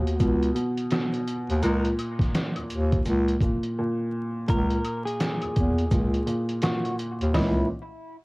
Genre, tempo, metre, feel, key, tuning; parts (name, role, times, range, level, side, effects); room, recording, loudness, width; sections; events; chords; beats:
hip hop, boom-bap hip-hop; 84 BPM; 4/4; swing 62% on 16ths; C# dorian; A4 = 436 Hz
warm upright piano; accompaniment; 0.0-7.7 s; A#2 to D#5; -28 LUFS; equal; cassette tape, high-pass filter, low-pass filter
mellow bass clarinet; bass; 0.0-7.7 s; C#2 to E2; -24 LUFS; equal
trip hop sampler-style drum kit; drums; 0.1-7.6 s; hi-hat, kick drum, snare drum, toms; -26 LUFS; equal; overdrive, cassette tape
tube shaker and woodblock; percussion; 0.2-7.7 s; -42 LUFS; left 3 dB
clear horn section; stabs; 1.6-1.9 s; D#4 to A#4; -36 LUFS; left 1 dB; high-pass filter, low-pass filter, cassette tape, analog delay
clean electric guitar; melody; 4.5-7.7 s; E4 to A#4; -32 LUFS; equal; high-pass filter, low-pass filter, cassette tape, analog delay
little or no reverb; home recording on cassette, vinyl crackle; -23 LUFS; side -26 dB against mid
0.0-4.5 A section; 4.5-7.3 B section
break 3.8-4.5; filter sweep 4.5-7.3
0.0 Emaj7(no3)/C# (rootless); 1.6 D#7(no3)/C#; 4.5 C#m6; 7.3 C#m69
0.20 0.92 | 1.63 2.34 3.06 3.77 | 4.49 5.20 5.92 6.63 | 7.34